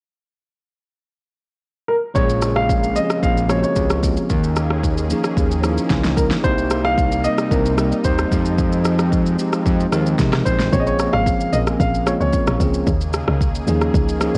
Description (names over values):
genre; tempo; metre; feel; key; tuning
amapiano; 112 BPM; 4/4; straight; Bb dorian; A4 = 439 Hz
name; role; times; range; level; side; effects
warm baby grand piano; melody; 1.9-12.6 s; Bb4 to F5; -24 LUFS; equal; digital delay
tine electric piano; accompaniment; 2.1-14.4 s; F3 to Bb4; -24 LUFS; equal; none
lush unison pad; sustained chords; 2.2-14.4 s; C3 to Ab4; -31 LUFS; equal; chorus, sidechain pumping
fat analog bass; bass; 2.2-10.7 s; Bb1 to F2; -23 LUFS; equal; none
deep house drum kit; drums; 2.2-14.4 s; kick drum, rim click, shaker, snare drum; -24 LUFS; equal; none
woody log drum bass; bass; 10.7-14.4 s; Ab1 to Eb2; -24 LUFS; equal; none
room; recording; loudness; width
light reverb, digital ambience; worn, warbling old tape, cassette tape, warbly pitch drift; -18 LUFS; mono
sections
0.0-2.2 A section; 2.2-14.4 B section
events
none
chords
0.0 N.C.; 2.2 Bbm7; 4.3 Eb7sus4; 6.4 Cm7; 8.3 Fm7; 10.7 Bbm7; 12.9 Eb7sus4